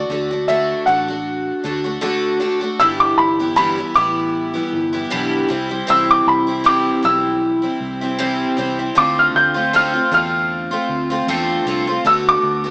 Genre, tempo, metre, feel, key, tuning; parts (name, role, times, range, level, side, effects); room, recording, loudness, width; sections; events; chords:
acoustic pop; 78 BPM; 4/4; swing 55% on 16ths; G major; A4 = 440 Hz
dark upright piano; melody; 0.0-12.7 s; D5 to G6; -15 LUFS; equal; cassette tape
picked twelve-string acoustic guitar; accompaniment; 0.0-12.7 s; G2 to F#4; -18 LUFS; equal; cassette tape
vintage muted fingered electric bass; bass; 0.0-12.7 s; G1 to E2; -31 LUFS; equal; tube saturation
moderate spring reverb, RT60 2.2 s; home recording on cassette, small speaker sound; -15 LUFS; side -30 dB against mid
0.0-2.8 A section; 2.8-12.7 B section
0.0 D; 2.8 G6; 5.5 C; 9.0 Dm7; 12.0 Bm7/D